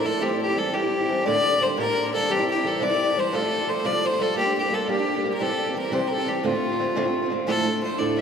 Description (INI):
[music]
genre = celtic folk, Celtic jig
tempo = 116 BPM (dotted quarters)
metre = 6/8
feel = straight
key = unclear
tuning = A4 = 440 Hz
[part]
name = clear fiddle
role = melody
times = 0.0-8.2 s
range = F4 to E5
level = -25 LUFS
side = left 1 dB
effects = none
[part]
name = mellow hollow alto flute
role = second line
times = 0.0-7.3 s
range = F4 to D5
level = -27 LUFS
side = left 3 dB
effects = none
[part]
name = picked old ladder-braced acoustic guitar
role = accompaniment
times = 0.0-8.2 s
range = D2 to G4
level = -25 LUFS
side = right 2 dB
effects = none
[sound]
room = wet cathedral reverb, RT60 5.8 s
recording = recorded in a church or concert hall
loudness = -21 LUFS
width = side -7 dB against mid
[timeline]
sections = 0.0-7.5 A section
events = none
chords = 0.2 C/E; 1.3 Gmadd9/D; 2.3 C; 3.3 Fadd9; 4.4 Gm; 5.4 C; 6.4 Dm7; 7.5 Dmadd9